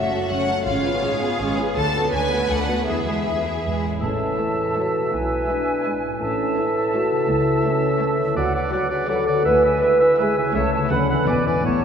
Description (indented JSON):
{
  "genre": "classical",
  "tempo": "165 BPM",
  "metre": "3/4",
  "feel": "rubato",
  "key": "A major",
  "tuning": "A4 = 440 Hz",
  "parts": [
    { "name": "warm symphonic violin section", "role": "melody", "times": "0.0-11.6 s", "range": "D5 to A5", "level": "-30 LUFS", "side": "left 3 dB", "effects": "none" },
    { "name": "warm symphonic violin section", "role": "second line", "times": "0.0-11.6 s", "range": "E4 to F#5", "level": "-33 LUFS", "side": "left 3 dB", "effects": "none" },
    { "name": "rich symphonic viola section", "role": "accompaniment", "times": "0.0-11.6 s", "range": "E3 to E#4", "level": "-30 LUFS", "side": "right 2 dB", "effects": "none" },
    { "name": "concert harp", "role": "arpeggios", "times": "0.0-11.8 s", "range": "F#2 to A5", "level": "-29 LUFS", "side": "left 4 dB", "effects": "none" },
    { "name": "rich symphonic cello section", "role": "bass", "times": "0.0-11.8 s", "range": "C#2 to B4", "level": "-30 LUFS", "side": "right 3 dB", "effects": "none" },
    { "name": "warm symphonic double bass section", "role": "bass", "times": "0.0-11.8 s", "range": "E1 to E2", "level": "-30 LUFS", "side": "right 2 dB", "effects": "none" },
    { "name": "clear oboe", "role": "second line", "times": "4.0-11.8 s", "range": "C#5 to F#5", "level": "-27 LUFS", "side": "right 2 dB", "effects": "none" },
    { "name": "flute section", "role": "second line", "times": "4.0-11.8 s", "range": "F#5 to B5", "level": "-28 LUFS", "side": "right 1 dB", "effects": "none" },
    { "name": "warm clarinet", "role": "second line", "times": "4.0-11.8 s", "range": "A4 to C#5", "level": "-26 LUFS", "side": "equal", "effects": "none" },
    { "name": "dark bassoon", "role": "accompaniment", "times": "4.0-11.8 s", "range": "D3 to F#3", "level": "-27 LUFS", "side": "right 1 dB", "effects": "none" },
    { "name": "dark French horn section", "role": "sustained chords", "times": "4.0-11.8 s", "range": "A3 to B4", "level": "-22 LUFS", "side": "equal", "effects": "none" },
    { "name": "timpani", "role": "percussion", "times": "4.0-4.5 s", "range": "A2", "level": "-37 LUFS", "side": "equal", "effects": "none" }
  ],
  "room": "wet church reverb, RT60 3.9 s",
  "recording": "recorded in a church or concert hall",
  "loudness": "-18 LUFS",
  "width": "side -7 dB against mid",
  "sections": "0.0-4.0 A section; 4.0-11.8 B section",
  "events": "none",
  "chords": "0.0 F#m; 0.7 C#7/G#; 1.8 Bm7/D; 2.9 E; 4.0 A; 5.1 E7/B; 6.2 A; 7.3 A/C#; 8.4 Bm/D; 9.5 E7/D; 10.5 A/C#; 10.9 Bm/D; 11.3 E7"
}